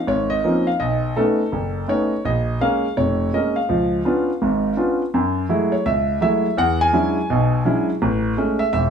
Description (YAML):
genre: solo jazz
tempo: 166 BPM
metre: 4/4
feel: swing 63% on 8ths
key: F# minor from 5.1 s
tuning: A4 = 442 Hz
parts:
  - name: warm concert grand piano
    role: solo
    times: 0.0-8.9 s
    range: E1 to G#5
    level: -17 LUFS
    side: equal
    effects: none
room: wet studio reverb, RT60 0.5 s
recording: band playing live in one room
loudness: -17 LUFS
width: side -7 dB against mid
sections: 0.0-5.1 A section; 5.1-8.9 B section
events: none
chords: 0.0 Dbmaj13; 0.8 B9; 2.2 Bbm7; 3.7 Db7b9; 5.1 F#m9; 6.6 E13; 8.0 Amaj7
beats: 0.07 0.43 | 0.79 1.16 1.52 1.88 | 2.24 2.60 2.96 3.33 | 3.69 4.05 4.41 4.77 | 5.13 5.49 5.85 6.21 | 6.57 6.93 7.29 7.65 | 8.01 8.37 8.72